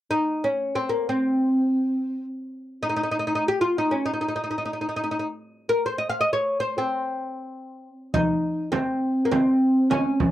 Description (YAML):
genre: Turkish makam ensemble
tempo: free time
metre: none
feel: none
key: C makam kurdi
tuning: A4 = 440 Hz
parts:
  - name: oud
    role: melody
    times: 0.1-10.3 s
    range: Bb3 to F5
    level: -22 LUFS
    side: equal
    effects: none
  - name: darbuka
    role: percussion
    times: 8.1-10.3 s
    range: none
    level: -28 LUFS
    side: left 2 dB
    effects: none
  - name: frame drum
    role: percussion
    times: 8.1-10.3 s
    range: none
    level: -27 LUFS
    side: right 6 dB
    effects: none
room: moderate booth ambience, RT60 0.2 s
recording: dry, close 1970s-style studio recording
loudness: -22 LUFS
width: side -13 dB against mid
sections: 0.0-8.1 A section; 8.1-10.3 B section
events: none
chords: none